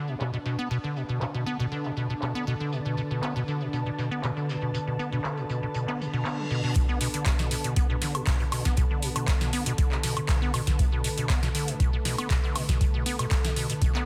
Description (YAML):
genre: acid house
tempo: 119 BPM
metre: 4/4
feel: straight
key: B minor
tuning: A4 = 440 Hz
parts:
  - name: warbly tape-like pad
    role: sustained chords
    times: 0.0-14.1 s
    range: D3 to A4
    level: -38 LUFS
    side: equal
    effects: chorus, built-in reverb, sidechain pumping
  - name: acid bass, square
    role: riff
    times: 0.0-14.1 s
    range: B2 to B3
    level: -32 LUFS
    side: equal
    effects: tube saturation, subtle chorus, sidechain pumping, digital delay
  - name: ethereal airy pad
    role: texture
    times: 0.0-14.1 s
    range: D4 to A5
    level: -40 LUFS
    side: equal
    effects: ensemble chorus, built-in reverb, sidechain pumping
  - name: booming analog drum machine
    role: drums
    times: 0.2-14.0 s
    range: handclaps, hi-hat, snare drum, woodblock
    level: -35 LUFS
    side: equal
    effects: low-pass filter on hats, low-pass filter on snare, low-pass filter on cymbals, low-pass filter on perc, low-pass filter on room
  - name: unplugged drum kit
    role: drums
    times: 0.2-13.9 s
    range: hi-hat, snare drum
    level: -46 LUFS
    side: equal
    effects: none
  - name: reverse cymbal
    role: sound effects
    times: 6.1-6.8 s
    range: none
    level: -41 LUFS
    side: equal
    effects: none
  - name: electronic kick drum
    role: drums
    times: 6.8-13.9 s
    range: none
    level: -28 LUFS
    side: equal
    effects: none
room: light reverb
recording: dense, heavily limited modern master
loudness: -27 LUFS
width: mono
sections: 0.0-6.8 A section; 6.8-14.1 B section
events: filter sweep on ambient pad 0.0-6.8; reverse cymbal 6.1-6.8; drop 6.8-14.1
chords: 0.0 Bm7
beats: 0.20 | 0.71 1.21 1.72 2.22 | 2.72 3.23 3.73 4.24 | 4.74 5.24 5.75 6.25 | 6.76 7.26 7.76 8.27 | 8.77 9.28 9.78 10.29 | 10.79 11.29 11.80 12.30 | 12.81 13.31 13.82